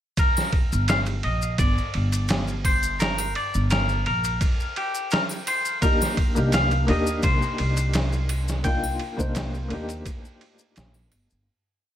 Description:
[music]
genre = trip hop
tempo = 85 BPM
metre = 4/4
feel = straight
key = G minor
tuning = A4 = 439 Hz
[part]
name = clean electric guitar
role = melody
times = 0.2-10.7 s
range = G4 to G5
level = -27 LUFS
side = left 2 dB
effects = tape echo
[part]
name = trip hop sampler-style drum kit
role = drums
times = 0.2-11.3 s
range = kick drum, ride cymbal, snare drum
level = -26 LUFS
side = equal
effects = none
[part]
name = maracas and triangle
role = percussion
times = 0.2-11.4 s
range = none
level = -36 LUFS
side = left 3 dB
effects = none
[part]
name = upright bass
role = bass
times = 0.7-11.5 s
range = G1 to Eb2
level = -25 LUFS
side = equal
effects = none
[part]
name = felt-muted upright piano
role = accompaniment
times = 5.8-11.5 s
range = Bb3 to C5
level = -28 LUFS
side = left 1 dB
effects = tremolo, vintage 12-bit sampler grit
[sound]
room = small room ambience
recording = none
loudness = -21 LUFS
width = side -11 dB against mid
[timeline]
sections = 0.2-11.5 groove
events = fade-out 7.7-11.5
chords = 0.2 Gm; 5.8 Cm7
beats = | 0.18 0.88 1.59 2.29 | 3.00 3.71 4.41 5.12 | 5.82 6.53 7.23 7.94 | 8.65 9.35 10.06 10.76

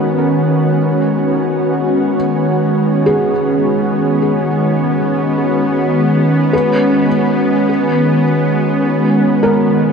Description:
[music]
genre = ambient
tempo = 52 BPM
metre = 4/4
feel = straight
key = unclear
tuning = A4 = 439 Hz
[part]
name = ethereal airy pad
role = sustained chords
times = 0.0-9.9 s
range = D#3 to F#4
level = -13 LUFS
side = equal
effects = ensemble chorus, built-in reverb
[part]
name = felt-muted upright piano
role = arpeggios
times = 0.0-9.9 s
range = G#4 to B4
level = -21 LUFS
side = equal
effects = ping-pong delay
[part]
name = bowed-like drone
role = drone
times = 0.0-9.9 s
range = B3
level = -20 LUFS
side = left 1 dB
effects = built-in reverb
[sound]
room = wet huge ambient reverb, RT60 8.1 s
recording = cassette tape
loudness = -12 LUFS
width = side -6 dB against mid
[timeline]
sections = 0.0-9.9 A section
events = none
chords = 0.0 G#m7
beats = 0.76 | 1.91 3.06 4.22 5.37 | 6.53 7.68 8.83

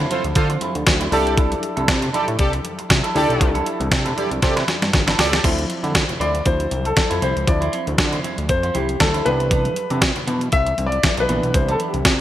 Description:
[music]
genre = early-eighties boogie funk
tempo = 118 BPM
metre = 4/4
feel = swing 56% on 16ths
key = D dorian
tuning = A4 = 444 Hz
[part]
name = warm concert grand piano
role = accompaniment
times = 0.0-12.1 s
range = E3 to E5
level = -24 LUFS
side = left 2 dB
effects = none
[part]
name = clean electric guitar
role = riff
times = 0.0-12.1 s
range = E3 to B4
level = -27 LUFS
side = right 4 dB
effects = lush chorus
[part]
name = fat analog bass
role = bass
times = 0.0-12.2 s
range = G1 to D3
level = -23 LUFS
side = equal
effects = none
[part]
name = analog synth brass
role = second line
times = 0.1-5.4 s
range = F4 to D5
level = -25 LUFS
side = right 2 dB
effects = chorus
[part]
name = crisp 8-bit digital drum machine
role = drums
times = 0.1-12.2 s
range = crash cymbal, hi-hat, kick drum, snare drum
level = -19 LUFS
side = equal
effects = overdrive, gated reverb
[part]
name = congas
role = percussion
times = 0.1-12.0 s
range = none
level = -32 LUFS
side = left 3 dB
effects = none
[sound]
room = moderate plate reverb, RT60 2.8 s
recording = bright 1980s-style digital production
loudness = -17 LUFS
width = side -12 dB against mid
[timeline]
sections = 0.0-5.4 A section; 5.4-12.2 B section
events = drum fill 4.4-5.4; grand piano solo 5.4-12.2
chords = 0.0 Dm9; 1.1 C69; 5.4 Dm9; 9.3 Cmaj9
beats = 0.36 0.86 | 1.37 1.88 2.39 2.90 | 3.41 3.92 4.42 4.93 | 5.44 5.95 6.46 6.97 | 7.48 7.98 8.49 9.00 | 9.51 10.02 10.53 11.04 | 11.54 12.05

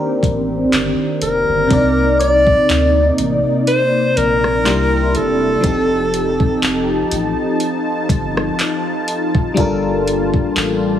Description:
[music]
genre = contemporary R&B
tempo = 61 BPM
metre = 4/4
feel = swing 54% on 16ths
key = unclear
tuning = A4 = 438 Hz
[part]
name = FM electric piano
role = accompaniment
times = 0.0-11.0 s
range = C3 to D5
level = -19 LUFS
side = left 2 dB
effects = chorus
[part]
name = warm analog pad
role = sustained chords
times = 0.0-11.0 s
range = C3 to A5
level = -20 LUFS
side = equal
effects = chorus, sidechain pumping
[part]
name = saturated sub bass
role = bass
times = 0.2-11.0 s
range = E1 to D2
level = -22 LUFS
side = equal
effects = none
[part]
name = smooth R&B drum kit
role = drums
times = 0.2-10.8 s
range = handclaps, hi-hat, kick drum, rim click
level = -20 LUFS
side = equal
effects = none
[part]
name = breathy alto saxophone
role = melody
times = 1.2-7.1 s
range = A4 to D5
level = -16 LUFS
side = left 1 dB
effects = none
[part]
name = glassy synth bell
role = texture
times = 2.2-6.1 s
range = C6 to D6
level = -32 LUFS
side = right 1 dB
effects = chorus, tremolo, tape echo
[sound]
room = moderate plate reverb, RT60 2.0 s, digital ambience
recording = heavily compressed radio sound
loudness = -13 LUFS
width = side -10 dB against mid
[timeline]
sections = 0.0-1.7 A section; 1.7-11.0 B section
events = FM electric piano solo 0.0-1.7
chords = 0.0 Cm9; 4.7 C13; 5.6 F9; 9.6 Gm9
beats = 0.72 | 1.71 2.69 3.67 4.66 | 5.64 6.62 7.61 8.59 | 9.57 10.56

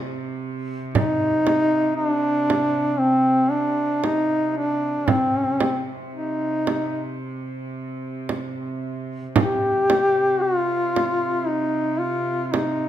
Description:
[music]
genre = caucasian folk, Caucasian lament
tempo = 57 BPM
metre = 4/4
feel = rubato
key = C minor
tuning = A4 = 440 Hz
[part]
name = rich studio cello section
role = drone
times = 0.0-12.9 s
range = C3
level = -30 LUFS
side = right 2 dB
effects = none
[part]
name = mellow duduk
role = melody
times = 0.9-12.9 s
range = C4 to G4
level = -20 LUFS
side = left 1 dB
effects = none
[part]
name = frame drum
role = percussion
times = 0.9-12.8 s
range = none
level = -23 LUFS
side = right 4 dB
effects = none
[sound]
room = moderate recital hall reverb, RT60 1.4 s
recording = minimal, uncompressed stereo recording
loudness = -20 LUFS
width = side -11 dB against mid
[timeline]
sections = 0.0-12.9 A section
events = none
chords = none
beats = | 0.95 1.98 3.00 4.03 | 5.07 6.13 7.21 8.29 | 9.36 10.43 11.49 12.54

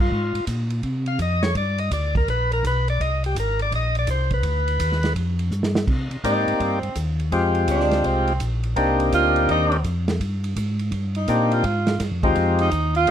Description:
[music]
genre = soul jazz organ trio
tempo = 166 BPM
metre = 4/4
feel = swing 65% on 8ths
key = C minor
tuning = A4 = 440 Hz
[part]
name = percussive tonewheel organ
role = melody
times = 0.0-13.1 s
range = Ab3 to F5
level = -22 LUFS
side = left 2 dB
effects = overdrive, slow rotary speaker
[part]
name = mellow tonewheel organ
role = bass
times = 0.0-13.1 s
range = Ab1 to C3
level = -23 LUFS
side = equal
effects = chorus vibrato, slow rotary speaker
[part]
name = warm soul drum kit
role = drums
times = 0.1-13.1 s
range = crash cymbal, hi-hat, kick drum, ride cymbal, snare drum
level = -28 LUFS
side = right 2 dB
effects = none
[part]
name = clear tenor saxophone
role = melody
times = 6.2-13.1 s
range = C4 to F4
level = -23 LUFS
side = right 4 dB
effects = none
[sound]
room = light reverb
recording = none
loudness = -19 LUFS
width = side -9 dB against mid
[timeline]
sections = 0.0-5.9 A section; 5.9-13.1 A section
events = tonewheel organ solo 0.0-5.9; drum fill 5.5-5.9; tenor saxophone solo 5.9-13.1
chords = 0.1 Ab; 1.6 G; 3.0 Abadd9(#11); 4.4 G7; 5.9 Cm7; 7.3 Fm; 8.8 Cm7; 11.6 Fm7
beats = | 0.11 0.47 0.84 1.20 | 1.56 1.92 2.28 2.64 | 3.00 3.36 3.72 4.08 | 4.44 4.80 5.16 5.52 | 5.88 6.24 6.60 6.96 | 7.32 7.68 8.04 8.40 | 8.77 9.12 9.48 9.85 | 10.21 10.56 10.93 11.29 | 11.64 12.00 12.36 12.72 | 13.08

